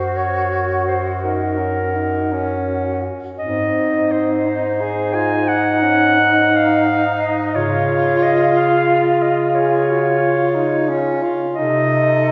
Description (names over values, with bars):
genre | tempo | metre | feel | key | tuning
classical, lyrical piece for single-reed quartet | 54-61 BPM (dotted quarters) | 12/8 | rubato | Db major | A4 = 441 Hz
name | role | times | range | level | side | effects
warm clarinet | melody | 0.0-12.3 s | Bb4 to Ab5 | -21 LUFS | equal | none
warm alto saxophone | second line | 0.0-12.3 s | Eb4 to A4 | -24 LUFS | equal | none
mellow tenor saxophone | accompaniment | 0.0-12.3 s | C4 to Ab4 | -24 LUFS | equal | none
warm bass clarinet | bass | 0.0-12.3 s | Gb2 to Db3 | -24 LUFS | equal | none
room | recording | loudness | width
wet concert hall reverb, RT60 2.4 s | heard from further back in the room, nothing above 7.8 kHz | -17 LUFS | mono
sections
0.0-12.3 A section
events
none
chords
0.0 Gb; 3.4 Ab; 7.6 Db; 11.6 Cm6